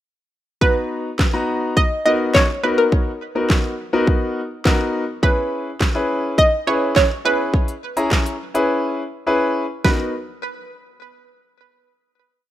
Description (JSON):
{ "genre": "dance-pop", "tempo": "104 BPM", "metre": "4/4", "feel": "straight", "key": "B major", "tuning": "A4 = 440 Hz", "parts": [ { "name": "analog pluck", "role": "melody", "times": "0.6-10.1 s", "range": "A#4 to D#5", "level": "-19 LUFS", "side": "right 2 dB", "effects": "chorus, digital delay" }, { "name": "bright concert grand piano", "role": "accompaniment", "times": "0.6-10.1 s", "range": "B3 to A#5", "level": "-21 LUFS", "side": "left 2 dB", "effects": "sidechain pumping" }, { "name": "pop drum kit", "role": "drums", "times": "0.6-10.0 s", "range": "handclaps, hi-hat, kick drum, snare drum", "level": "-17 LUFS", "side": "equal", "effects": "overdrive" } ], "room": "light reverb", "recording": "rough home demo mix", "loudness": "-17 LUFS", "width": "side -13 dB against mid", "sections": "0.6-9.8 verse; 9.8-12.2 final chord", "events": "drums muted 8.7-9.8", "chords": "0.6 Bmaj7; 5.2 E6; 9.8 Bmaj7" }